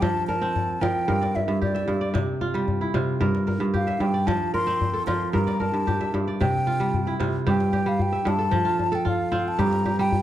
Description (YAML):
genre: west african traditional, West African string and xylophone music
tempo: 113 BPM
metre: 4/4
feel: straight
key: unclear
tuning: A4 = 440 Hz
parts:
  - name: mellow hollow concert flute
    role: melody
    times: 0.0-10.2 s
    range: D5 to C6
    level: -26 LUFS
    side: left 1 dB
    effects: none
  - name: kora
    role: arpeggios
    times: 0.0-10.2 s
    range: G2 to E5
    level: -24 LUFS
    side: right 2 dB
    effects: none
  - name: djembe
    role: percussion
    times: 0.0-10.2 s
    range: none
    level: -28 LUFS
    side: left 3 dB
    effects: none
room: moderate recital hall reverb, RT60 1.4 s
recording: dark, warm production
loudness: -21 LUFS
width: side -12 dB against mid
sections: 0.0-7.5 A section; 7.5-10.2 B section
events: flute solo 7.5-10.2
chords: 0.0 F; 1.1 Gm; 2.1 C; 3.2 Gm; 4.3 F; 5.3 Gm; 6.4 C; 7.5 Fmaj9/G; 8.5 F; 9.6 Gm9